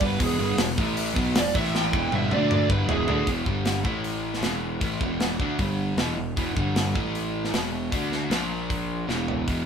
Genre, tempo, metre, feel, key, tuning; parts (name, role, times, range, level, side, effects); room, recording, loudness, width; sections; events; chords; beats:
hard rock; 155 BPM; 4/4; straight; A4 = 440 Hz
lead guitar through a small cranked amp; melody; 0.0-3.3 s; G#4 to G5; -28 LUFS; right 6 dB; overdrive
overdriven tonewheel organ; sustained chords; 0.0-3.3 s; E3 to E5; -38 LUFS; equal
overdriven semi-hollow guitar; riff; 0.0-9.7 s; E2 to D4; -26 LUFS; equal; spring reverb
fuzz fingered electric bass; bass; 0.0-9.7 s; E1 to D2; -31 LUFS; equal; overdrive
tight metal drum kit; drums; 0.0-9.6 s; hi-hat, kick drum, snare drum, toms; -27 LUFS; equal
light reverb; band playing live in one room; -23 LUFS; side -7 dB against mid
0.0-3.3 A section; 3.3-9.7 B section
lead electric guitar solo 0.0-3.3; drum fill 1.7-3.3, 9.1-9.5
0.0 E; 0.8 A5; 1.2 E5; 1.5 A5; 1.9 E5; 2.3 D5; 2.7 E; 3.3 E5; 3.5 G5; 3.9 A5; 4.4 E5; 5.6 G5; 6.0 E5; 6.6 G5; 7.0 A5; 7.5 E5; 7.9 D5; 8.3 A#5; 9.1 E5
| 0.20 0.58 0.96 1.35 | 1.73 2.12 2.50 2.89 | 3.27 3.66 4.05 4.43 | 4.82 5.21 5.60 5.99 | 6.37 6.76 7.15 7.54 | 7.92 8.31 8.70 9.09 | 9.47